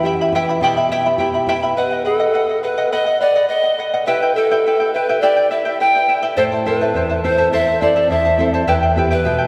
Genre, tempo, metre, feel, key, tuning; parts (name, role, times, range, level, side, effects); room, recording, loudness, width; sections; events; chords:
andean folk, Andean ensemble; 104 BPM; 2/4; straight; E minor; A4 = 441 Hz
charango; accompaniment; 0.0-9.5 s; E4 to B5; -21 LUFS; equal
nylon-string guitar; accompaniment; 0.0-1.8, 6.4-9.5 s; E2 to B4; -24 LUFS; equal
bright reedy polished pan flute; melody; 1.8-9.5 s; A4 to G5; -19 LUFS; equal
wet cathedral reverb, RT60 5.2 s; recorded in a church or concert hall; -17 LUFS; mono
0.0-1.8 A section; 1.8-9.5 B section
0.0 Em; 1.8 B; 4.1 Em; 6.4 Am; 8.7 Em